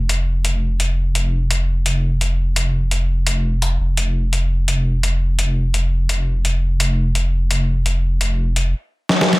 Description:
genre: half-time drum and bass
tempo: 170 BPM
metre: 4/4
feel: half-time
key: unclear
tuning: A4 = 439 Hz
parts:
  - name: deep soft wobble bass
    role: bass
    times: 0.0-8.7 s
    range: F1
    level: -17 LUFS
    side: equal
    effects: chorus
  - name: boom bap sampler-style drum kit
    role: drums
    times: 0.1-9.4 s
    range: hi-hat, snare drum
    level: -20 LUFS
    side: left 1 dB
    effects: none
room: little or no reverb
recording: none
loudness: -16 LUFS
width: side -20 dB against mid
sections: 0.0-9.4 A section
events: drum fill 9.1-9.4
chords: none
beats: 0.27 0.62 | 0.98 1.33 1.68 2.04 | 2.39 2.74 3.09 3.45 | 3.80 4.15 4.51 4.86 | 5.21 5.57 5.92 6.27 | 6.62 6.98 7.33 7.68 | 8.04 8.39 8.74 9.09

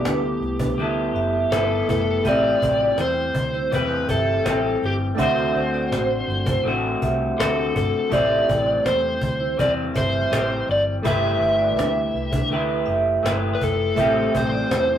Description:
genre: indie pop, bedroom pop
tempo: 82 BPM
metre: 4/4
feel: straight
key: A dorian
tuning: A4 = 440 Hz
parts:
  - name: overdriven slide guitar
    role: melody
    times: 0.0-15.0 s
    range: G4 to E5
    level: -23 LUFS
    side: left 2 dB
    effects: slapback echo
  - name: vibraphone with medium hard mallets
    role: second line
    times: 0.0-14.9 s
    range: D4 to E5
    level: -25 LUFS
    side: right 4 dB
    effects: none
  - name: chorused retro synth keys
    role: accompaniment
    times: 0.0-15.0 s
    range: A3 to C5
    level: -31 LUFS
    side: right 2 dB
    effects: none
  - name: electric guitar through a small old amp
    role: accompaniment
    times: 0.0-15.0 s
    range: A2 to B4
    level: -25 LUFS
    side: left 1 dB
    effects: warbly pitch drift
  - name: vintage muted picked electric bass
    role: bass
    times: 0.0-15.0 s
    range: F#1 to E2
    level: -28 LUFS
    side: equal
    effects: none
  - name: cajon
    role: drums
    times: 0.1-14.9 s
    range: none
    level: -28 LUFS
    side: equal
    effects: none
room: wet booth ambience, RT60 0.2 s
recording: rough rehearsal-room recording, warm saturation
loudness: -19 LUFS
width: side -10 dB against mid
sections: 0.0-15.0 A section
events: none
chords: 0.0 G69; 2.3 Am7; 11.0 G69; 14.0 Am7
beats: 0.05 0.79 1.52 | 2.25 2.98 3.72 4.45 | 5.18 5.91 6.65 7.38 | 8.11 8.85 9.58 10.31 | 11.04 11.78 12.51 13.24 | 13.97 14.71

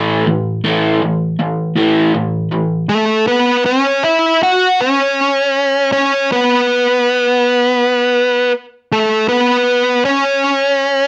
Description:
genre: rock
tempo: 80 BPM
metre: 4/4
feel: straight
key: A major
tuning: A4 = 436 Hz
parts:
  - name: crunchy overdriven guitar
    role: riff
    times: 0.0-2.9 s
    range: A2 to A3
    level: -16 LUFS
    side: equal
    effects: none
  - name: octave-fuzz lead guitar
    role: melody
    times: 2.9-11.1 s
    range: A3 to F#4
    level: -14 LUFS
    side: equal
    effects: distortion, slapback echo
room: moderate studio reverb, RT60 0.6 s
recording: none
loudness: -14 LUFS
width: mono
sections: 0.0-2.9 A section; 2.9-11.1 B section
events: none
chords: 0.0 A5; 2.9 N.C.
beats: 0.63 1.38 2.14 | 2.89 3.64 4.39 5.15 | 5.90 6.65 7.41 8.16 | 8.91 9.66 10.42

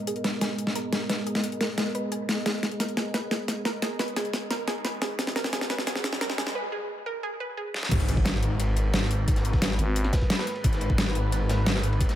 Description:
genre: dark technical drum and bass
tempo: 176 BPM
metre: 4/4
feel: straight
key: G# minor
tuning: A4 = 439 Hz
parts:
  - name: dark analog pad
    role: sustained chords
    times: 0.0-12.2 s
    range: G#3 to D#5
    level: -34 LUFS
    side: equal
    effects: chorus, sidechain pumping
  - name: wide unison pluck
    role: arpeggios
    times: 0.0-7.7 s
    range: G#4 to B4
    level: -33 LUFS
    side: right 2 dB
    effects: sidechain pumping, dub echo
  - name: dubstep drum kit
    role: drums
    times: 0.1-12.2 s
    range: crash cymbal, hi-hat, snare drum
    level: -28 LUFS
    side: equal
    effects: overdrive
  - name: riser and impact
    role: sound effects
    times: 4.6-9.3 s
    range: none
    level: -35 LUFS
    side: equal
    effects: none
  - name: snarling distorted saw bass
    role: bass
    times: 7.9-12.2 s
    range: G#1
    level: -26 LUFS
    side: equal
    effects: distortion, overdrive, sidechain pumping
  - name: crunchy breakbeat drum kit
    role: drums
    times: 7.9-12.2 s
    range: ride cymbal, snare drum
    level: -37 LUFS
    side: equal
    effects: high-pass filter on cymbals, high-pass filter on snare, high-pass filter on room
  - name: electronic kick drum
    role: drums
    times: 7.9-12.1 s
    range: none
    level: -24 LUFS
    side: equal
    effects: overdrive
  - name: growling FM bass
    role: bass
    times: 9.8-10.1 s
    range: G#1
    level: -24 LUFS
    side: equal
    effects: none
room: light reverb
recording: high-pass filter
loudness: -24 LUFS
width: side -12 dB against mid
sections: 0.0-7.9 A section; 7.9-12.2 B section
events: build-up 0.0-7.9; drum fill 0.0-6.6, 7.7; filter sweep on synth arpeggio sound 0.0-7.9; riser 4.6-6.6; break 6.6-7.9; drop 7.9-12.2; impact 7.9-9.3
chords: 0.0 G#madd9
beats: 0.07 0.41 0.76 | 1.10 1.44 1.78 2.12 | 2.46 2.80 3.14 3.48 | 3.82 4.17 4.51 4.85 | 5.19 5.53 5.87 6.21 | 6.55 6.89 7.23 7.57 | 7.92 8.26 8.60 8.94 | 9.28 9.62 9.96 10.30 | 10.64 10.98 11.32 11.66 | 12.01

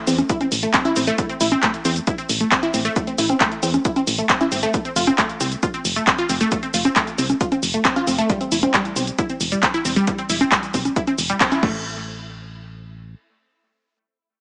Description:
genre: uplifting trance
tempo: 135 BPM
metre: 4/4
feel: straight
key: unclear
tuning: A4 = 442 Hz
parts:
  - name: unison pluck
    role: arpeggios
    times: 0.1-12.0 s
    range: G3 to F4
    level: -25 LUFS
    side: equal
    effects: sidechain pumping, tape echo
  - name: solid FM bass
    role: bass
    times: 0.1-13.1 s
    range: E1 to E2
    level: -29 LUFS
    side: equal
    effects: sidechain pumping
  - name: punchy analog drum machine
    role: drums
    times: 0.1-11.7 s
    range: congas, crash cymbal, handclaps, hi-hat, shaker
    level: -22 LUFS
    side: equal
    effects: sidechain pumping on hats, sidechain pumping on perc, sidechain pumping on cymbals
  - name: electronic kick drum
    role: drums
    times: 0.3-11.7 s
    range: none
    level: -27 LUFS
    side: equal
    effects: none
room: light reverb, digital ambience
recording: small speaker sound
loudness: -20 LUFS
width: mono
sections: 0.0-11.9 A section; 11.9-14.4 B section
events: drop 0.0-11.9; band accent 11.4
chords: 0.0 Am; 4.7 F; 8.3 C/E; 11.6 N.C.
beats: 0.29 0.74 | 1.18 1.63 2.07 2.52 | 2.96 3.41 3.85 4.29 | 4.74 5.18 5.63 6.07 | 6.52 6.96 7.41 7.85 | 8.29 8.74 9.18 9.63 | 10.07 10.52 10.96 11.41 | 11.85 12.29 12.74

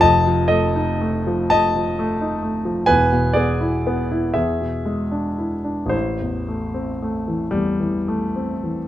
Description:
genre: classical, romantic nocturne for solo piano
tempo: 36-45 BPM (dotted quarters)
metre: 6/8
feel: rubato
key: unclear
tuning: A4 = 440 Hz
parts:
  - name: warm concert grand piano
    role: solo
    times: 0.0-8.9 s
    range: E1 to A5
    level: -18 LUFS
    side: equal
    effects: none
room: light reverb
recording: close, detailed microphones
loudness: -18 LUFS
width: side -12 dB against mid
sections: 0.0-8.9 A section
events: none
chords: 0.0 F7; 2.9 E; 4.4 E7; 5.9 Am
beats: | 0.03 1.51 | 2.88 4.36 | 5.93 7.54

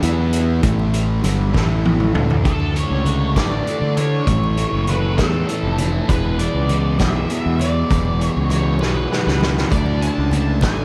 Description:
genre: psychedelic rock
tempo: 66 BPM (dotted quarters)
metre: 6/8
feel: straight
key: E mixolydian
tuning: A4 = 438 Hz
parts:
  - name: percussive tonewheel organ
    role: sustained chords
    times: 0.0-10.8 s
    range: E3 to E5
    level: -33 LUFS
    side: equal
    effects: none
  - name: fuzz guitar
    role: riff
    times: 0.0-10.8 s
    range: E2 to E4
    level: -25 LUFS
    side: equal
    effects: distortion, phaser, dub echo
  - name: fuzz fingered electric bass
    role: bass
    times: 0.0-10.8 s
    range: E1 to D3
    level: -22 LUFS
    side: equal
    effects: overdrive
  - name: vintage drum kit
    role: drums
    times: 0.0-10.8 s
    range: hi-hat, kick drum, snare drum, toms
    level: -24 LUFS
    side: equal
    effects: none
  - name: congas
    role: percussion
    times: 0.0-10.8 s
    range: none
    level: -33 LUFS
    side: equal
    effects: none
  - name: octave-fuzz lead guitar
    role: melody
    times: 2.5-10.8 s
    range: A4 to A5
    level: -28 LUFS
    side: equal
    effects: wah, distortion, dub echo
room: little or no reverb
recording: echo-heavy mix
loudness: -18 LUFS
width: mono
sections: 0.0-2.5 A section; 2.5-10.8 B section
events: drum fill 1.5-2.5, 8.8-9.7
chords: 0.0 E5; 0.6 A5; 2.5 Dsus2; 4.3 A; 6.1 E; 9.7 Dsus2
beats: | 0.63 1.54 | 2.45 3.36 | 4.27 5.17 | 6.08 6.99 | 7.90 8.81 | 9.71 10.62

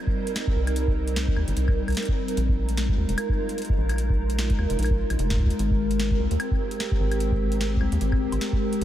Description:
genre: IDM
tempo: 149 BPM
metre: 4/4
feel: swing 56% on 16ths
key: Ab major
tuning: A4 = 440 Hz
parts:
  - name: glassy FM pad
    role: sustained chords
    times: 0.0-8.8 s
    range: G3 to Bb4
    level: -28 LUFS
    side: equal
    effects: ensemble chorus, built-in reverb
  - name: electronic kick drum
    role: drums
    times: 0.1-8.6 s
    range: none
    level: -25 LUFS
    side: equal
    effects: none
  - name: booming analog drum machine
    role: drums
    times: 0.3-8.8 s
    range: hi-hat, snare drum, woodblock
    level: -34 LUFS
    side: left 1 dB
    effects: ping-pong delay
  - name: rubbery square bass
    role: bass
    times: 0.6-8.8 s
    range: F1 to Eb2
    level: -25 LUFS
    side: equal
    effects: none
room: moderate cathedral reverb, RT60 6.4 s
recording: dreamy mix soaked in reverb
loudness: -22 LUFS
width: side -12 dB against mid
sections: 0.0-8.8 A section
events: none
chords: 0.0 Cm7; 2.4 Bb7sus4; 5.6 Abmaj9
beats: 0.36 | 0.76 1.16 1.57 1.97 | 2.37 2.77 3.18 3.58 | 3.98 4.38 4.79 5.19 | 5.59 6.00 6.40 6.80 | 7.20 7.61 8.01 8.41 | 8.81

